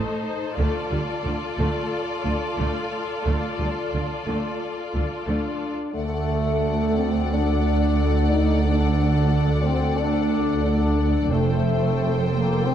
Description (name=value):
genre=cinematic, epic orchestral film score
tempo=90 BPM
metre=4/4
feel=straight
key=unclear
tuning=A4 = 440 Hz
part: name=warm symphonic violin section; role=second line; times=0.0-12.7 s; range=A4 to D5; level=-31 LUFS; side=left 3 dB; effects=none
part: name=rich symphonic viola section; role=accompaniment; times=0.0-12.7 s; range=G3 to A4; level=-30 LUFS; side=equal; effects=none
part: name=clear symphonic double bass section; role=bass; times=0.6-12.7 s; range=F1 to D2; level=-24 LUFS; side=right 2 dB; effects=none
part: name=rich symphonic cello section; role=bass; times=0.6-12.7 s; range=D2 to D3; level=-27 LUFS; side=right 3 dB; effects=none
part: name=warm French horn section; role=sustained chords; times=5.3-12.7 s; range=A3 to Eb4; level=-25 LUFS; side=left 5 dB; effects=none
part: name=rich symphonic violin section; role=melody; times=6.0-12.7 s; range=F#5 to G5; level=-34 LUFS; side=left 7 dB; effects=none
room=moderate scoring stage reverb, RT60 1.7 s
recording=dark, warm production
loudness=-20 LUFS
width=side -10 dB against mid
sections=0.0-6.0 A section; 6.0-12.7 B section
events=build-up 0.0-6.0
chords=0.0 Adim; 0.6 Dm; 6.0 D; 11.3 Fadd9